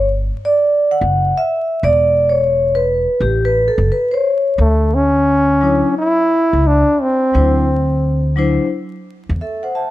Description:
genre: hip hop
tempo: 87 BPM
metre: 4/4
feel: swing 64% on 16ths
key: D major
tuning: A4 = 440 Hz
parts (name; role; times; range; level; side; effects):
- vibraphone with medium mallets; accompaniment; 0.0-9.9 s; F#3 to A5; -15 LUFS; equal; none
- upright bass; bass; 0.0-9.4 s; E1 to E2; -17 LUFS; equal; none
- warm trombone; melody; 4.6-8.4 s; A3 to E4; -14 LUFS; equal; none
room: light reverb, small room ambience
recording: dark, warm production, vinyl crackle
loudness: -13 LUFS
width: side -15 dB against mid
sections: 0.0-4.6 A section; 4.6-9.9 B section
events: vibraphone solo 0.0-4.6; vibraphone fill 9.1-9.9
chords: 0.0 Em9; 1.8 Bmadd11/E; 3.2 F#madd11 (rootless); 4.6 Dmaj7sus2; 7.3 D9

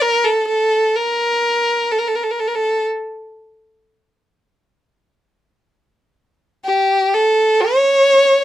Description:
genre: arabic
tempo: free time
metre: none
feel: none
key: unclear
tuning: A4 = 440 Hz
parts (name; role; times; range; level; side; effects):
- clear violin; solo; 0.0-8.4 s; G4 to C#5; -14 LUFS; equal; none
room: light reverb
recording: dark, warm production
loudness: -14 LUFS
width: side -13 dB against mid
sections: 0.0-8.4 A section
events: none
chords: none

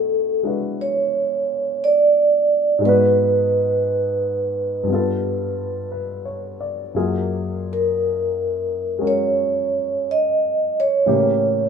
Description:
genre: jazz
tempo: 58 BPM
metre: 4/4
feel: swing 68% on 8ths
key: F# major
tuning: A4 = 440 Hz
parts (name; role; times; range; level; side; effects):
- vibraphone with soft mallets; melody; 0.0-11.7 s; A4 to D#5; -18 LUFS; right 3 dB; none
- warm baby grand piano; accompaniment; 0.0-11.7 s; F#2 to D5; -24 LUFS; left 4 dB; none
room: moderate studio reverb, RT60 0.8 s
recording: minimal, uncompressed stereo recording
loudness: -17 LUFS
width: side -6 dB against mid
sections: 0.0-11.7 A section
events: none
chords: 0.0 Bm11; 2.8 G#m7; 4.9 G9; 6.9 F#maj9; 11.1 A7b9

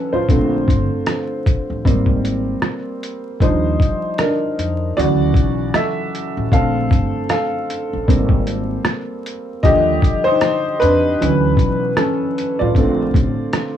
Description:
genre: lo-fi hip hop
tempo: 77 BPM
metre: 4/4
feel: swing 58% on 16ths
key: unclear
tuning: A4 = 440 Hz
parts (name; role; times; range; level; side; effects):
- warm upright piano; accompaniment; 0.0-13.8 s; C#3 to F5; -18 LUFS; equal; cassette tape, plate reverb
- upright bass; bass; 0.1-13.3 s; G1 to F2; -21 LUFS; equal; transformer saturation
- lo-fi sampler-style drum kit; drums; 0.3-13.7 s; hi-hat, kick drum, rim click; -17 LUFS; equal; vintage 12-bit sampler grit
room: light reverb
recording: worn, warbling old tape, cassette tape, vinyl crackle, warbly pitch drift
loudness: -15 LUFS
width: side -10 dB against mid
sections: 0.0-13.8 A section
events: upright piano solo 0.0-13.8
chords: 0.3 Bbmaj9; 1.8 Abmaj9; 3.4 Ebmaj9; 5.0 Dmaj9; 6.5 Bbmaj9; 8.1 Abmaj9; 9.6 Ebmaj9; 11.2 Dmaj9; 12.8 Bbmaj9

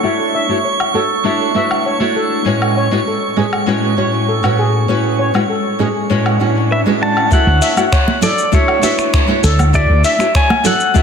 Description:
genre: sunset chillout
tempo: 99 BPM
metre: 4/4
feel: straight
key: unclear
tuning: A4 = 441 Hz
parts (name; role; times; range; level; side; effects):
- nylon-string guitar; accompaniment; 0.0-11.0 s; A2 to D5; -16 LUFS; equal; auto-pan, low-pass filter, digital delay
- steel pan; arpeggios; 0.0-11.0 s; F#4 to F#5; -20 LUFS; left 2 dB; low-pass filter, digital delay
- drifting glass-harmonics texture; texture; 0.0-7.3 s; C#6; -23 LUFS; right 6 dB; chorus, built-in reverb
- dusty soul sampler-style drum kit; drums; 0.8-11.0 s; cabasa, finger snaps, hi-hat, woodblock; -21 LUFS; left 2 dB; soft clipping on snare
- swell; sound effects; 6.5-7.3 s; none; -25 LUFS; right 2 dB; none
- pedal steel guitar; melody; 6.7-11.0 s; C#5 to A5; -16 LUFS; left 1 dB; vintage 12-bit sampler grit, digital delay
- electronic kick drum; drums; 7.3-11.0 s; none; -14 LUFS; equal; none
- woody fretless electric bass; bass; 7.5-10.0 s; D2; -12 LUFS; equal; none
- congas; percussion; 8.1-10.8 s; none; -20 LUFS; right 3 dB; none
room: moderate concert hall reverb, RT60 2.2 s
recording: dense, heavily limited modern master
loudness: -12 LUFS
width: side -6 dB against mid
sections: 0.0-7.3 A section; 7.3-11.0 B section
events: swell 6.5-7.3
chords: 0.0 Dmaj9; 2.5 Amaj13; 7.3 Dmaj9

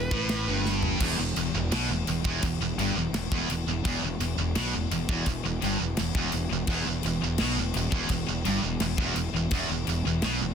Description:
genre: heavy metal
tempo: 84 BPM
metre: 4/4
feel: straight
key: E minor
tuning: A4 = 436 Hz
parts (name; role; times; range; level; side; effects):
- high-gain lead guitar; melody; 0.0-0.6 s; B4; -37 LUFS; right 3 dB; distortion, digital delay
- crunchy overdriven guitar; riff; 0.0-10.5 s; E2 to B2; -33 LUFS; equal; none
- heavy high-gain guitar; riff; 0.0-10.5 s; E2 to B2; -31 LUFS; right 13 dB; distortion
- scooped high-gain guitar; riff; 0.0-10.5 s; E2 to B2; -33 LUFS; left 11 dB; distortion
- fuzz fingered electric bass; bass; 0.0-10.5 s; E1 to B1; -31 LUFS; equal; overdrive
- tight metal drum kit; drums; 0.1-10.4 s; crash cymbal, kick drum, ride cymbal, snare drum, toms; -32 LUFS; left 1 dB; none
room: studio reverb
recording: dense, heavily limited modern master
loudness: -25 LUFS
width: side -7 dB against mid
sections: 0.0-1.0 A section; 1.0-10.5 B section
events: drum fill 0.6-1.0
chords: 0.0 Em

